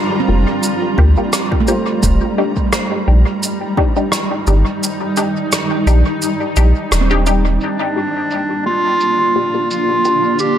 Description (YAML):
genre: ambient dub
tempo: 86 BPM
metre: 4/4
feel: swing 54% on 16ths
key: G minor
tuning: A4 = 444 Hz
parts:
  - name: granular cloud pad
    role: sustained chords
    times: 0.0-10.6 s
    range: G3 to Bb5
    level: -20 LUFS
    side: right 1 dB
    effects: built-in reverb
  - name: handpan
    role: arpeggios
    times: 0.2-8.5 s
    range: A3 to C5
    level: -24 LUFS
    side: right 6 dB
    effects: dub echo
  - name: filtered dub chord stab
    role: stabs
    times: 0.3-10.3 s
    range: Bb3 to G4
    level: -22 LUFS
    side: left 2 dB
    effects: phaser, dub echo
  - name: soft dub sub bass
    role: bass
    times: 0.3-7.6 s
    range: Eb1 to D2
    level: -12 LUFS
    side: equal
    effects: none
  - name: shaker and rim click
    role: drums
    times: 0.6-10.5 s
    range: none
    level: -22 LUFS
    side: equal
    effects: low-pass filter on snare, low-pass filter on perc, low-pass filter on room, dub echo
  - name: electronic kick drum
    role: drums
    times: 1.0-3.9 s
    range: none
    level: -17 LUFS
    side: equal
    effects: none
  - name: clear clarinet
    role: melody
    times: 7.6-10.6 s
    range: D4 to G4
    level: -15 LUFS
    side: equal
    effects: dub echo
room: moderate spring reverb, RT60 2.5 s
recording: echo-heavy mix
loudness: -13 LUFS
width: side -10 dB against mid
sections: 0.0-7.6 A section; 7.6-10.6 B section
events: kick drops out 4.8-7.6; filter sweep on drum 7.6-10.6; filter sweep on synth stab 7.6-10.6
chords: 0.0 Gm7; 2.0 Ebmaj7; 7.6 Gm7